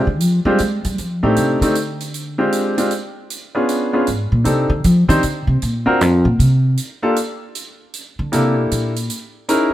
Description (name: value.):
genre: jazz piano trio.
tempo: 155 BPM.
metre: 3/4.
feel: swing 65% on 8ths.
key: unclear.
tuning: A4 = 440 Hz.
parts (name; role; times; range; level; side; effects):
clear concert grand piano; melody; 0.0-9.7 s; Ab3 to C5; -18 LUFS; equal; none.
upright bass; bass; 0.0-9.1 s; D2 to Ab3; -16 LUFS; equal; none.
hi-hat; drums; 0.2-9.6 s; none; -30 LUFS; right 5 dB; none.
room: light reverb.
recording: none.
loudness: -15 LUFS.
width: side -13 dB against mid.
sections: 0.0-9.7 A section.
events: upright bass solo 0.0-9.7.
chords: 0.0 Fm69; 1.0 F13; 2.1 Abmaj7#11; 3.3 Bdim7; 4.5 F7sus2; 5.6 Dm7b13; 6.8 N.C.; 7.9 C13; 9.1 Cm7 (rootless).